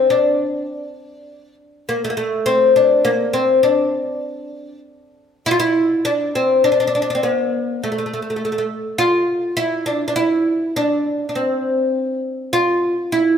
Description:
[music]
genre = arabic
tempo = 102 BPM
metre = 3/4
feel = straight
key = unclear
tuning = A4 = 440 Hz
[part]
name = oud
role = solo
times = 0.0-13.4 s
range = A3 to F4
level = -16 LUFS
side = left 1 dB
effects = none
[sound]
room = moderate recital hall reverb, RT60 1.4 s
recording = close, detailed microphones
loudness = -16 LUFS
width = side -8 dB against mid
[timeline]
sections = 0.0-5.4 A section; 5.4-13.4 B section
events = none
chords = none

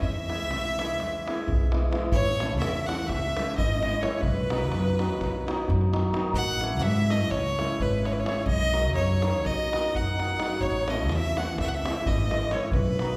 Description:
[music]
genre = balkan folk, Balkan wedding band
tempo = 255 BPM (eighths)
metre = 9/8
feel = straight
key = unclear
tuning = A4 = 442 Hz
[part]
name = clear fiddle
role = melody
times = 0.0-13.2 s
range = B4 to F#5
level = -33 LUFS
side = equal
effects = none
[part]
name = warm violin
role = second line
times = 0.0-13.2 s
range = B4 to F#5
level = -36 LUFS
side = equal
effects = none
[part]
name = hammered dulcimer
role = accompaniment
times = 0.0-13.2 s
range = D#3 to E4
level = -34 LUFS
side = equal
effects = none
[part]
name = upright bass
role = bass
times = 0.0-13.2 s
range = G#1 to G#2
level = -31 LUFS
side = equal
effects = none
[part]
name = davul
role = percussion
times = 0.0-13.1 s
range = none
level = -33 LUFS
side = equal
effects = none
[sound]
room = wet recital hall reverb, RT60 1.5 s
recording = recorded in a church or concert hall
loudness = -26 LUFS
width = mono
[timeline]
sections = 0.0-2.1 A section; 2.1-13.2 A section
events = none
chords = 0.0 E; 2.1 A; 3.1 C#m; 4.2 B; 6.4 A; 7.3 C#m; 8.5 B; 10.6 A; 11.5 C#m

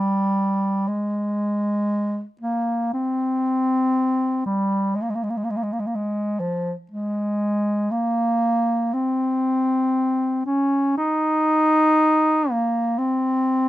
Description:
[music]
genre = classical, free, expressive piece for unaccompanied bass clarinet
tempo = 56-62 BPM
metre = 4/4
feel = rubato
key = unclear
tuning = A4 = 440 Hz
[part]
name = breathy bass clarinet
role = solo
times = 0.0-13.7 s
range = F3 to Eb4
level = -19 LUFS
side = equal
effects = none
[sound]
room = little or no reverb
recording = close, detailed microphones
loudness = -20 LUFS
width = side -15 dB against mid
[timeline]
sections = 0.0-13.7 A section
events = none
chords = none

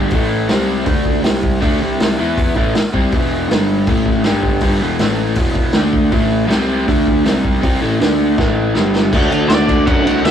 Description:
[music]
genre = garage rock duo or trio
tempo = 160 BPM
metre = 4/4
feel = straight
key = unclear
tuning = A4 = 441 Hz
[part]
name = crunchy overdriven guitar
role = riff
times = 0.0-10.3 s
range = E2 to F#4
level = -16 LUFS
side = equal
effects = spring reverb
[part]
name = fuzz picked electric bass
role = bass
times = 0.0-10.3 s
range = E1 to F#2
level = -20 LUFS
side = equal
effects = overdrive
[part]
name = vintage drum kit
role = drums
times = 0.1-10.3 s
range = crash cymbal, hi-hat, kick drum, ride cymbal, snare drum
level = -17 LUFS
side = equal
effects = none
[part]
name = octave-fuzz lead guitar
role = melody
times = 9.5-10.3 s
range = D5 to F#5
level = -19 LUFS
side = equal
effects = distortion
[sound]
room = moderate small room reverb, RT60 0.6 s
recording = rough rehearsal-room recording, warm saturation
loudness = -13 LUFS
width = side -9 dB against mid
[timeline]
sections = 0.0-9.1 A section; 9.1-10.3 B section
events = drum fill 8.4-9.1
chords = 0.1 A5; 0.5 C5; 0.9 D5; 1.2 C5; 1.6 D5; 1.8 C5; 2.2 E5; 2.6 A5; 3.1 E5; 3.5 G5; 3.9 A5; 4.2 G5; 4.6 Em; 5.0 A5; 5.4 E5; 5.7 D5; 6.1 A5; 6.5 C5; 6.9 D5; 7.2 C5; 7.6 A5; 8.0 D5; 8.4 A5; 8.7 G5; 9.1 D

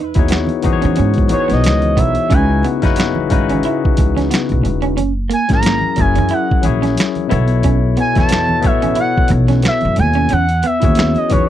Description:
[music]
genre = R&B, neo-soul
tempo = 90 BPM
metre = 4/4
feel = swing 56% on 16ths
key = unclear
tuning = A4 = 440 Hz
[part]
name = electric guitar through a small old amp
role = second line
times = 0.0-11.3 s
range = A#3 to E4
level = -22 LUFS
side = right 7 dB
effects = none
[part]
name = boom bap sampler-style drum kit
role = drums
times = 0.1-11.5 s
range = finger snaps, hi-hat, kick drum, snare drum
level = -17 LUFS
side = right 1 dB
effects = none
[part]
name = barky tine electric piano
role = accompaniment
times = 0.2-11.5 s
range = B2 to C#5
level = -18 LUFS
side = left 10 dB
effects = overdrive
[part]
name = upright bass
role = bass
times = 0.2-11.5 s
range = E1 to E3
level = -17 LUFS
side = right 1 dB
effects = none
[part]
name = congas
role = percussion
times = 0.2-11.5 s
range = none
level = -26 LUFS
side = right 4 dB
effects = none
[part]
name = expressive portamento lead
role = melody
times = 1.3-11.5 s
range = C#5 to A#5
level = -19 LUFS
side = right 1 dB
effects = chorus, tape echo
[sound]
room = little or no reverb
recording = dry, close 1970s-style studio recording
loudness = -12 LUFS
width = side -11 dB against mid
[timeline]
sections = 0.0-11.5 A section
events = analog synth lead solo 0.0-11.5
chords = 0.0 Emaj13; 2.3 C#m11; 5.0 F#9; 7.3 B9sus4; 10.3 Emaj13

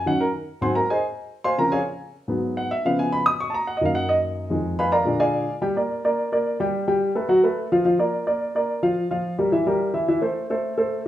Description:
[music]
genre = jazz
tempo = 216 BPM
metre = 4/4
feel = straight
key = G minor from 5.6 s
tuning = A4 = 442 Hz
[part]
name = dark grand piano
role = solo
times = 0.0-11.0 s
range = F2 to Eb6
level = -20 LUFS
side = equal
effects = none
[sound]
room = moderate large studio reverb, RT60 0.8 s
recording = band playing live in one room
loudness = -20 LUFS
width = side -13 dB against mid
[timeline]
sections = 0.0-5.6 A section; 5.6-11.1 B section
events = grand piano solo 0.0-5.6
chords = 0.1 Ebm7; 0.6 Ab7; 1.2 Dbmaj7; 2.3 Abm7; 2.8 Db7; 3.4 Gb6; 4.5 Fm7b5; 5.1 Bb7; 5.6 Gm; 6.7 Gadd9; 7.3 B5; 7.8 Bb; 9.0 Gm7; 9.5 Edim; 10.1 Am

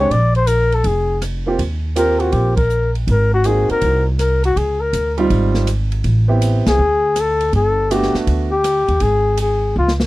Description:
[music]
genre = jazz, small-group swing and bop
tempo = 162 BPM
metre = 4/4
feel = swing 66% on 8ths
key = unclear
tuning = A4 = 440 Hz
[part]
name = trumpet with bucket mute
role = melody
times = 0.0-9.9 s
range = F4 to D5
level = -17 LUFS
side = left 2 dB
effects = none
[part]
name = clear grand piano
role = accompaniment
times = 0.0-8.5 s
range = G3 to G4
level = -19 LUFS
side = right 3 dB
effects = none
[part]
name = upright bass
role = bass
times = 0.0-10.1 s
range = F1 to Eb2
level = -17 LUFS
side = equal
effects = none
[part]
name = open jazz drum kit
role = drums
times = 0.1-10.1 s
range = hi-hat, kick drum, ride cymbal, rim click, snare drum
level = -26 LUFS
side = equal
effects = none
[sound]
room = little or no reverb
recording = dry, close 1970s-style studio recording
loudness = -14 LUFS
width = side -18 dB against mid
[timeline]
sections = 0.0-10.1 A section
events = band accent 2.5, 6.6; drum fill 9.8-10.1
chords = 0.1 Bb5; 1.6 Eb69; 3.1 Ab9; 4.6 Dbmaj9#11; 6.0 Am9; 6.8 D5; 7.5 Gmaj9; 9.0 N.C.

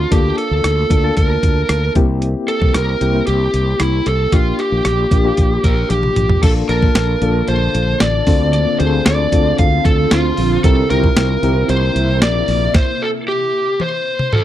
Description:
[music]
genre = 1980s-style pop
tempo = 114 BPM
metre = 4/4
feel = straight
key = unclear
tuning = A4 = 439 Hz
[part]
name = lead guitar through a small cranked amp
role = melody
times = 0.0-14.4 s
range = E4 to F5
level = -18 LUFS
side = equal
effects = overdrive, slapback echo
[part]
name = soft electric-piano-like synth keys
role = accompaniment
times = 0.0-12.8 s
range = Bb3 to A5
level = -20 LUFS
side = left 3 dB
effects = chorus, tremolo
[part]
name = fretless electric bass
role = bass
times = 0.0-12.7 s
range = A1 to D2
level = -18 LUFS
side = equal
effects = none
[part]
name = clean 12-bit digital drum machine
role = drums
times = 0.1-14.4 s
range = crash cymbal, hi-hat, kick drum, rim click, snare drum, toms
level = -15 LUFS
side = equal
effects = none
[part]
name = granular cloud pad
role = sustained chords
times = 7.2-12.7 s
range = C3 to A5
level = -24 LUFS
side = right 2 dB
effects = built-in reverb
[sound]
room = little or no reverb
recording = dry, close 1970s-style studio recording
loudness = -13 LUFS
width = side -12 dB against mid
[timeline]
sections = 0.0-6.4 A section; 6.4-14.4 B section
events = drum fill 5.9-6.4, 13.8-14.4; stop 12.7-14.4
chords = 0.1 Bbmaj7/D; 2.0 C7; 4.3 Gm7/Bb; 6.4 Bbmaj7; 8.3 Dm7; 10.6 C7; 12.7 N.C.

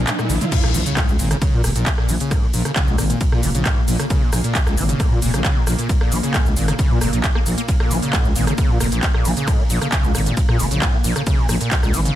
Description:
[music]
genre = driving peak-time techno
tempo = 134 BPM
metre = 4/4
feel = straight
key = Bb minor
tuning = A4 = 440 Hz
[part]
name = overdriven acid bass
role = riff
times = 0.0-12.2 s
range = Bb1 to Bb3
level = -24 LUFS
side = equal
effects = distortion, analog chorus, sidechain pumping, ping-pong delay
[part]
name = growling FM bass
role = bass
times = 0.0-12.1 s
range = F1 to Bb2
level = -21 LUFS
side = equal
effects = sidechain pumping
[part]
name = riser and impact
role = sound effects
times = 0.0-2.3 s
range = none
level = -27 LUFS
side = right 1 dB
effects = none
[part]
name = warbly tape-like pad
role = texture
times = 0.2-0.5 s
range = none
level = barely audible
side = none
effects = none
[part]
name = techno drum kit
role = drums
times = 0.1-12.1 s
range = crash cymbal, handclaps, hi-hat, ride cymbal, rim click, shaker, toms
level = -24 LUFS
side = equal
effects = none
[part]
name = swarming drone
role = drone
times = 1.7-12.2 s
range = Bb2 to Bb3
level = -27 LUFS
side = equal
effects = built-in reverb, sidechain pumping
[part]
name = electronic kick drum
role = drums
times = 0.5-11.8 s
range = none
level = -19 LUFS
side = equal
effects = none
[sound]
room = digital ambience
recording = none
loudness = -16 LUFS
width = side -13 dB against mid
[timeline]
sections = 0.5-12.2 A section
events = break 0.0-0.5; drum fill 0.0-0.5; riser 0.0-0.5; drop 0.5-12.2; impact 0.5-2.3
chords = 0.0 Bbm

